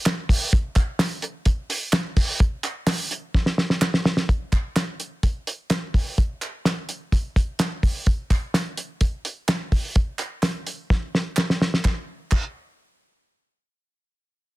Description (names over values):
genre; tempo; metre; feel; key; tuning
indie pop; 127 BPM; 4/4; straight; none; none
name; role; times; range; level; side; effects
cloth-damped thuddy drum kit; drums; 0.1-12.4 s; crash cymbal, hi-hat, kick drum, snare drum; -20 LUFS; equal; none
group handclap; percussion; 0.1-12.5 s; none; -31 LUFS; right 4 dB; none
room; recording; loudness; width
light reverb; dense, heavily limited modern master; -21 LUFS; side -19 dB against mid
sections
0.0-4.3 A section; 4.3-11.8 B section; 11.8-13.7 C section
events
drum fill 3.3-4.3, 10.9-11.8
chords
none